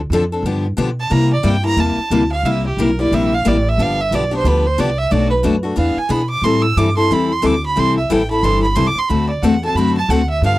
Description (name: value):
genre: acoustic string swing (jazz manouche)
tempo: 180 BPM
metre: 4/4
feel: swing 59% on 8ths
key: unclear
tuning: A4 = 440 Hz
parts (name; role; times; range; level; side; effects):
- upright bass; bass; 0.0-10.6 s; G1 to C3; -19 LUFS; right 1 dB; none
- picked steel-string acoustic guitar; accompaniment; 0.1-10.6 s; B2 to A4; -17 LUFS; left 3 dB; none
- clear violin; melody; 1.0-10.6 s; G4 to E6; -19 LUFS; right 3 dB; none
room: little or no reverb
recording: dry, close 1970s-style studio recording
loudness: -14 LUFS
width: side -17 dB against mid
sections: 0.0-10.6 A section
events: violin solo 0.0-10.6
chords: 0.5 G7; 1.1 C7; 3.8 G7; 5.1 Bm7; 5.8 E7; 6.4 Am7; 9.1 D7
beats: 0.12 0.46 0.79 | 1.12 1.45 1.79 2.12 | 2.45 2.78 3.12 3.45 | 3.78 4.12 4.45 4.78 | 5.11 5.45 5.78 6.11 | 6.44 6.78 7.11 7.44 | 7.77 8.10 8.44 8.77 | 9.10 9.43 9.77 10.10 | 10.43